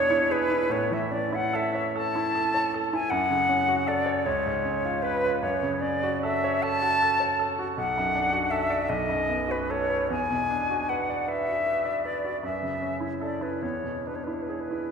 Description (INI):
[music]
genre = classical, romantic duo for flute and grand piano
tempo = 51 BPM (dotted quarters)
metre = 6/8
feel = uneven beats, rubato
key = unclear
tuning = A4 = 441 Hz
[part]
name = bright concert flute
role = melody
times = 0.0-14.9 s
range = B4 to A5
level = -26 LUFS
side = left 1 dB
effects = none
[part]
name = bright concert grand piano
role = accompaniment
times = 0.0-14.9 s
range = B1 to D5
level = -28 LUFS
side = right 2 dB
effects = none
[sound]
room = wet concert hall reverb, RT60 2.1 s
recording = heard from further back in the room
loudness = -24 LUFS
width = side -6 dB against mid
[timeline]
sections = 0.0-14.9 A section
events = none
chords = 0.0 E7; 0.7 A; 3.1 F#m; 4.3 C#7; 5.4 F#m; 7.8 Bm7; 8.9 B7; 10.1 E9; 12.4 F#m7; 13.6 E7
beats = | 0.70 1.95 | 3.11 4.26 | 5.42 6.63 | 7.77 8.89 | 10.11 11.28 | 12.43 13.63